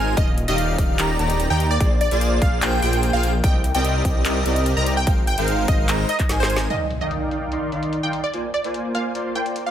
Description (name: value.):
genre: future bass.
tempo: 147 BPM.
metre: 4/4.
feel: half-time.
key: Eb major.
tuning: A4 = 441 Hz.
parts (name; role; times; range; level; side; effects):
wide unison pluck; melody; 0.0-9.7 s; C5 to Bb5; -26 LUFS; right 1 dB; phaser, cassette tape, sidechain pumping, tape echo.
airy dreamy lead; arpeggios; 0.0-6.7 s; D5 to Bb5; -28 LUFS; right 1 dB; chorus, sidechain pumping, tape echo.
soft supersaw; riff; 0.0-9.7 s; Eb3 to C6; -24 LUFS; equal; sidechain pumping, low-pass filter.
wide detuned saw bass; bass; 0.0-6.7 s; Eb1 to Eb2; -22 LUFS; equal; chorus, sidechain pumping.
electronic kick drum; drums; 0.2-6.3 s; none; -20 LUFS; equal; overdrive.
trap drum kit; drums; 0.2-9.6 s; handclaps, hi-hat, snare drum; -28 LUFS; left 1 dB; low-pass filter on snare, low-pass filter on hats.
impact; sound effects; 6.7-8.3 s; none; -31 LUFS; equal; none.
room: digital ambience.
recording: none.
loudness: -18 LUFS.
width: side -10 dB against mid.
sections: 0.0-6.7 A section; 6.7-9.7 B section.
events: drop 0.0-6.7; drum fill 6.3-6.7; impact 6.7-8.3.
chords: 0.2 Ebmaj7; 1.8 Bb9; 3.4 Cm9; 5.1 Ab69; 6.7 Ebmaj7; 8.3 Bb9.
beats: | 0.17 0.58 0.99 1.40 | 1.80 2.21 2.62 3.03 | 3.44 3.85 4.25 4.66 | 5.07 5.48 5.89 6.29 | 6.70 7.11 7.52 7.93 | 8.34 8.74 9.15 9.56.